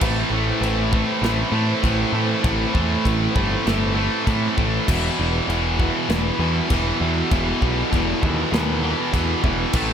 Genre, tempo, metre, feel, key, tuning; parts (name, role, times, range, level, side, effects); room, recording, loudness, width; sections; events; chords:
heavy metal; 99 BPM; 4/4; straight; E minor; A4 = 440 Hz
rich symphonic string section; sustained chords; 0.0-9.9 s; G3 to C5; -30 LUFS; right 1 dB
heavy high-gain guitar; riff; 0.0-9.9 s; E2 to A3; -27 LUFS; left 1 dB; distortion
high-gain distorted guitar; riff; 0.0-9.9 s; E2 to A3; -26 LUFS; left 12 dB; distortion
tight distorted guitar; riff; 0.0-9.9 s; E2 to A3; -25 LUFS; right 14 dB; distortion
growling picked electric bass; bass; 0.0-9.9 s; E1 to A2; -24 LUFS; equal; overdrive
modern studio drum kit; drums; 0.0-9.9 s; china cymbal, crash cymbal, kick drum, snare drum; -25 LUFS; equal
light reverb; -18 LUFS; side -8 dB against mid
0.0-9.9 A section
half time 0.0-9.9
0.0 Am; 4.9 Em